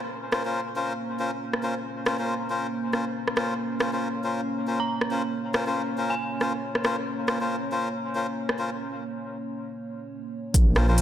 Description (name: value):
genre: deep dubstep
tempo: 138 BPM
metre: 4/4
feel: swing 57% on 16ths, half-time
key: Bb minor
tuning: A4 = 440 Hz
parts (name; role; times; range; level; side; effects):
- dark analog pad; sustained chords; 0.0-11.0 s; Bb3 to Db5; -31 LUFS; right 1 dB; chorus
- melodica; stabs; 0.3-11.0 s; Db4 to C5; -29 LUFS; left 2 dB; dub echo
- deep house drum kit; drums; 0.3-11.0 s; hi-hat, rim click; -29 LUFS; equal; none
- dark detuned synth bell; melody; 4.8-6.4 s; Ab5 to Bb5; -34 LUFS; right 2 dB; chorus, dub echo
- dark detuned saw bass; bass; 10.5-11.0 s; Bb1; -20 LUFS; equal; none
- electronic kick drum; drums; 10.5-10.6 s; none; -19 LUFS; equal; none
room: moderate lush hall reverb, RT60 1.7 s, digital ambience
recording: none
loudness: -25 LUFS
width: side -11 dB against mid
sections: 0.0-10.5 A section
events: break 8.8-10.5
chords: 0.0 Bbmadd9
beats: | 0.11 0.54 0.98 1.41 | 1.85 2.28 2.72 3.15 | 3.59 4.02 4.46 4.89 | 5.33 5.76 6.20 6.63 | 7.06 7.50 7.93 8.37 | 8.80 9.24 9.67 10.11 | 10.54 10.98